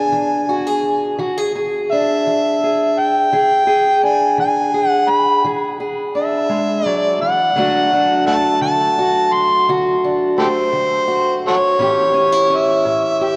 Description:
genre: acoustic country blues, solo or duo.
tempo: 57 BPM (dotted quarters).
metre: 12/8.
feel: straight.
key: unclear.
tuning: A4 = 440 Hz.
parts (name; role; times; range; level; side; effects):
overdriven harmonica; melody; 0.0-13.4 s; F#4 to C6; -18 LUFS; equal; none.
fingerpicked steel-string acoustic guitar; accompaniment; 0.0-13.4 s; A2 to G#4; -21 LUFS; equal; none.
room: wet cathedral reverb, RT60 4.8 s.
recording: recorded in a church or concert hall.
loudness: -16 LUFS.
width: mono.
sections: 0.0-13.4 A section.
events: none.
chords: 0.0 E7; 7.6 D7; 11.8 A7.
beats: 0.13 1.19 2.25 | 3.31 4.37 5.43 6.49 | 7.55 8.61 9.67 10.73 | 11.79 12.86.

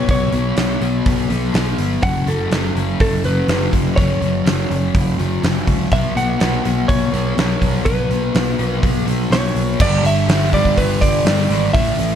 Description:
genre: rock, shoegaze and dream pop.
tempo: 124 BPM.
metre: 4/4.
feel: straight.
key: G lydian.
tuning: A4 = 444 Hz.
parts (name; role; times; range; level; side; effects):
direct-recorded clean electric guitar; melody; 0.0-12.2 s; A4 to F#5; -22 LUFS; right 1 dB; analog delay.
fuzz guitar; riff; 0.0-12.2 s; F#2 to B3; -20 LUFS; left 2 dB; distortion, lush chorus.
picked electric bass; bass; 0.0-12.2 s; F#1 to C#2; -21 LUFS; equal; none.
gated 80s drum kit; drums; 0.1-12.1 s; crash cymbal, hi-hat, kick drum, snare drum; -19 LUFS; equal; none.
room: light reverb, small room reverb.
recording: dark, warm production.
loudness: -15 LUFS.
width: side -9 dB against mid.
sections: 0.0-9.8 A section; 9.8-12.2 B section.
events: none.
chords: 0.0 Bsus2; 2.0 F#5; 5.9 Bsus2; 9.8 G5.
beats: | 0.09 0.57 1.06 1.55 | 2.03 2.52 3.00 3.49 | 3.98 4.46 4.95 5.43 | 5.92 6.41 6.89 7.38 | 7.86 8.35 8.83 9.32 | 9.80 10.29 10.77 11.25 | 11.74.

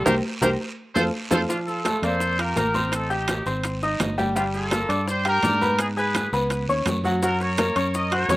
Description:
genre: latin, salsa.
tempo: 168 BPM.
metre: 4/4.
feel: straight.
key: unclear.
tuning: A4 = 436 Hz.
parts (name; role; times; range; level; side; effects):
bright trumpet section; melody; 0.0-8.4 s; D4 to Eb5; -25 LUFS; equal; none.
bright baby grand piano; accompaniment; 0.0-8.4 s; F3 to Ab6; -25 LUFS; left 1 dB; none.
fingered electric bass; bass; 0.0-8.4 s; G1 to Ab2; -28 LUFS; equal; none.
bongos; percussion; 0.1-8.4 s; none; -31 LUFS; left 3 dB; none.
congas; percussion; 0.1-8.4 s; none; -30 LUFS; equal; none.
guiro; percussion; 0.1-8.4 s; none; -37 LUFS; right 3 dB; slapback echo.
maracas; percussion; 0.1-8.4 s; none; -37 LUFS; left 3 dB; none.
timbales; percussion; 0.1-8.4 s; none; -28 LUFS; right 4 dB; none.
room: little or no reverb.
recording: recorded outdoors, with no room sound.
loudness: -21 LUFS.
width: side -18 dB against mid.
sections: 0.0-1.5 A section; 1.5-8.4 A section.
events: band accent 0.1-1.5.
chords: 0.1 C5; 0.8 F; 1.5 Bbmaj7; 2.9 Am7b5; 3.6 Ab; 4.4 Gm7; 5.8 Abm; 6.5 Db9sus4; 7.2 Gb.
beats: | 0.06 0.42 0.78 1.14 | 1.49 1.85 2.21 2.57 | 2.93 3.29 3.64 4.00 | 4.36 4.72 5.08 5.43 | 5.79 6.15 6.51 6.87 | 7.22 7.58 7.94 8.30.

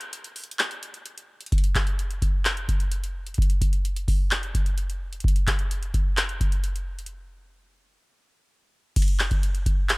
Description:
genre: hip hop.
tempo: 129 BPM.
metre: 4/4.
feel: half-time.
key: none.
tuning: none.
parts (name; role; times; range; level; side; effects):
booming analog drum machine; drums; 0.0-10.0 s; crash cymbal, handclaps, hi-hat, kick drum; -23 LUFS; equal; none.
room: little or no reverb.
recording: none.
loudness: -22 LUFS.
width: side -27 dB against mid.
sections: 0.0-9.0 A section; 9.0-10.0 B section.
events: break 0.0-1.5, 7.1-9.0.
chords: none.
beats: 0.13 0.59 1.06 | 1.52 1.99 2.45 2.92 | 3.38 3.85 4.31 4.78 | 5.24 5.71 6.17 6.64 | 7.10 7.57 8.03 8.50 | 8.96 9.43 9.89.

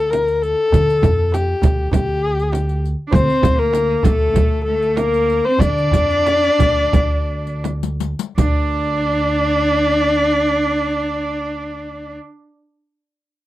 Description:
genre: Persian modal ensemble.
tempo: 80-100 BPM.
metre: 4/4.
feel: straight.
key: D dastgah shur.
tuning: A4 = 439 Hz.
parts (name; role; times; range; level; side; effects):
dark kamancheh; melody; 0.0-12.1 s; G4 to D5; -19 LUFS; left 3 dB; none.
upright bass; bass; 0.0-12.2 s; D2 to D3; -21 LUFS; equal; none.
frame drum; percussion; 0.1-8.7 s; none; -22 LUFS; right 3 dB; none.
riq; percussion; 0.1-8.7 s; none; -28 LUFS; left 11 dB; none.
tombak; percussion; 0.1-8.7 s; none; -22 LUFS; right 2 dB; none.
rich cello; second line; 3.1-12.1 s; A3 to D4; -21 LUFS; right 4 dB; none.
room: light reverb.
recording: dry, close 1970s-style studio recording.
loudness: -15 LUFS.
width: side -15 dB against mid.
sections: 0.0-8.4 A section; 8.4-11.4 B section.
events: slowing down 3.1-8.4; drum fill 7.6-8.4.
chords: none.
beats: 0.13 | 0.73 1.33 1.94 2.54 | 3.14 3.74 4.35 4.97 | 5.61 6.26 6.93 7.64 | 8.37 9.12 9.87 10.62.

